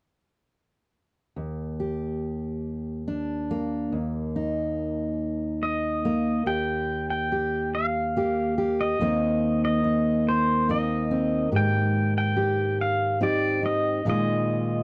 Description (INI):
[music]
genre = acoustic folk-pop ballad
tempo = 71 BPM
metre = 3/4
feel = straight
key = Eb major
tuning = A4 = 439 Hz
[part]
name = fingerpicked steel-string acoustic guitar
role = accompaniment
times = 1.4-14.8 s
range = Eb2 to G4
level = -27 LUFS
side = equal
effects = none
[part]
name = pedal steel guitar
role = melody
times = 5.6-14.8 s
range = C5 to G5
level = -30 LUFS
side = equal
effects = none
[sound]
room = little or no reverb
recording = dry, close 1970s-style studio recording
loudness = -26 LUFS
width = mono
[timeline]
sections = 1.4-6.5 A section; 6.5-14.8 B section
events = none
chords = 1.4 Ebmaj7; 3.9 Eb5; 9.0 Cm7/Eb; 11.5 Abmaj7; 14.0 Bb7sus4